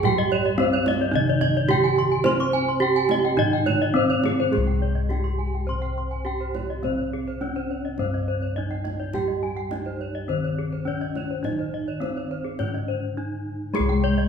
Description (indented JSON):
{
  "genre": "Balinese gamelan",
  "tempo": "104 BPM",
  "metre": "4/4",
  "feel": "straight",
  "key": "C pelog",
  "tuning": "A4 = 442 Hz",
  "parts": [
    { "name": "gamelan-type bronze metallophone", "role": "melody", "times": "0.0-14.3 s", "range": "Ab3-20c to C5", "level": "-26 LUFS", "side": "right 2 dB", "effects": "none" },
    { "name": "gamelan-type bronze metallophone", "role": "accompaniment", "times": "0.0-14.3 s", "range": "C3 to C4", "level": "-34 LUFS", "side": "right 2 dB", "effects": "none" },
    { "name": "gamelan-type bronze metallophone", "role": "arpeggios", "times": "0.0-14.2 s", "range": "Ab4-20c to Db6+20c", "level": "-28 LUFS", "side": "left 5 dB", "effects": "none" },
    { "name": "gamelan-type bossed gongs", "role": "bass", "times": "0.0-14.3 s", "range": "C2 to C5", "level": "-27 LUFS", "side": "left 1 dB", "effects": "none" },
    { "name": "kendang", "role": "percussion", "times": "0.0-14.0 s", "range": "none", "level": "-32 LUFS", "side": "right 3 dB", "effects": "none" },
    { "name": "gamelan-type bronze metallophone", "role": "arpeggios", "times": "0.3-14.3 s", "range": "C5 to C6", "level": "-32 LUFS", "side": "right 5 dB", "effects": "none" }
  ],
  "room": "wet recital hall reverb, RT60 1.6 s",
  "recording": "minimal, uncompressed stereo recording",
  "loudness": "-22 LUFS",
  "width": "side -6 dB against mid",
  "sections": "0.0-4.5 A section; 4.5-14.3 B section",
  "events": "none",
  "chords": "none"
}